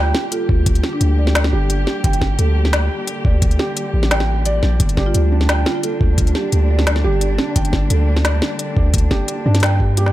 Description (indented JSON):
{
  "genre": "half-time drum and bass",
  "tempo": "174 BPM",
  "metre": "4/4",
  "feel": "half-time",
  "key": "G minor",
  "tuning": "A4 = 439 Hz",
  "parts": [
    { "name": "warm studio cello section", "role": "sustained chords", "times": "0.0-10.1 s", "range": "D3 to G4", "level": "-26 LUFS", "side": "left 3 dB", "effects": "sidechain pumping" },
    { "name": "felt-muted upright piano", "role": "arpeggios", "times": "0.0-10.1 s", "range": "D4 to G5", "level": "-25 LUFS", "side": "right 4 dB", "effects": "digital delay" },
    { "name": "long sustained 808-style bass", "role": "bass", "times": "0.0-10.1 s", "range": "G1 to G2", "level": "-16 LUFS", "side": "equal", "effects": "none" },
    { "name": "organic electronic drum kit", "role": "drums", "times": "0.1-10.1 s", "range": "hi-hat, snare drum", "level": "-21 LUFS", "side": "left 1 dB", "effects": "overdrive" },
    { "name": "marimba with medium mallets", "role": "melody", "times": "0.3-1.4, 5.1-7.2 s", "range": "D4 to G4", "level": "-26 LUFS", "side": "right 2 dB", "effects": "digital delay" },
    { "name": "electronic kick drum", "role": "drums", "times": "0.5-9.9 s", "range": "none", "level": "-17 LUFS", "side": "equal", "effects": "none" }
  ],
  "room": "digital ambience",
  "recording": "none",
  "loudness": "-14 LUFS",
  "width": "side -15 dB against mid",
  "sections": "0.0-10.1 A section",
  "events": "none",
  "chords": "0.0 Gm",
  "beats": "0.32 | 0.66 1.01 1.35 1.70 | 2.04 2.39 2.73 3.08 | 3.42 3.77 4.11 4.46 | 4.80 5.15 5.49 5.84 | 6.18 6.53 6.87 7.21 | 7.56 7.91 8.25 8.60 | 8.94 9.28 9.63 9.97"
}